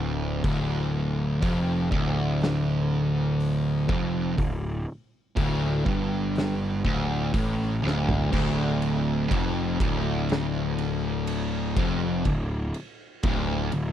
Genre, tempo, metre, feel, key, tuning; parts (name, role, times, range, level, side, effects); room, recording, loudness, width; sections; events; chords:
stoner and doom metal; 61 BPM; 4/4; straight; D minor; A4 = 438 Hz
fuzz guitar; riff; 0.0-13.9 s; D2 to A2; -26 LUFS; equal; distortion
fuzz picked electric bass; bass; 0.0-13.9 s; D1 to A1; -29 LUFS; equal; overdrive
oversized low-tuned drum kit; drums; 0.4-13.9 s; crash cymbal, hi-hat, kick drum, ride cymbal, snare drum, toms; -30 LUFS; equal
little or no reverb; dry, close 1970s-style studio recording; -23 LUFS; side -10 dB against mid
0.0-8.3 A section; 8.3-13.9 B section
drum fill 7.8-8.3
0.0 Dm